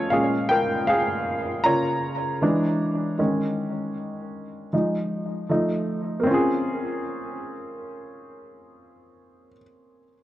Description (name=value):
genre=hip hop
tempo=78 BPM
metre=4/4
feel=swing 58% on 16ths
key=Bb minor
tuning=A4 = 439 Hz
part: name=warm upright piano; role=solo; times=0.0-10.2 s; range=Bb2 to Bb5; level=-22 LUFS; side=equal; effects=cassette tape, tape echo
room=moderate plate reverb, RT60 2.5 s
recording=dark, warm production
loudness=-22 LUFS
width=side -14 dB against mid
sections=0.0-6.3 A section; 6.3-9.3 B section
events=upright piano solo 0.0-6.3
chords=0.1 Bbm7; 1.6 Db6; 2.4 E7; 3.2 Eb7sus4; 4.7 Fm7; 5.5 F7; 6.3 Bbm9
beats=| 0.11 0.88 1.65 2.42 | 3.19 3.96 4.73 5.50 | 6.26 7.03 7.80 8.57